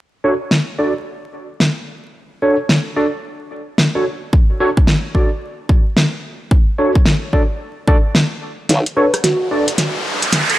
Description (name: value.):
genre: glitch hop.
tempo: 110 BPM.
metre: 4/4.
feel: swing 62% on 16ths.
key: unclear.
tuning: A4 = 440 Hz.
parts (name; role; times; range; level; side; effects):
overdriven tine electric piano; stabs; 0.2-9.6 s; D4 to D5; -19 LUFS; right 1 dB; ensemble chorus, sidechain pumping, low-pass filter, analog delay.
pop drum kit; drums; 0.5-10.6 s; hi-hat, rim click, snare drum; -16 LUFS; equal; none.
electronic kick drum; drums; 4.3-8.0 s; none; -13 LUFS; equal; none.
formant-sweep wobble bass; bass; 8.7-8.8 s; B1; -14 LUFS; equal; chorus, tube saturation, high-pass filter.
riser; sound effects; 9.4-10.6 s; none; -19 LUFS; right 2 dB; none.
sync lead; melody; 9.0-10.6 s; F#4 to B4; -21 LUFS; equal; chorus, analog delay.
room: light reverb, digital ambience.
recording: dry, gritty hardware recording, vinyl crackle.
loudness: -14 LUFS.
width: side -15 dB against mid.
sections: 0.0-8.7 A section; 8.7-10.6 B section.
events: kick drops out 8.1-8.7; build-up 8.7-10.6; drum fill 8.7-10.6; filter sweep on analog synth lead 8.7-10.6; filter sweep 8.7-10.6; riser 9.4-10.6.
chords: 0.0 Dmaj7; 8.7 Bm7.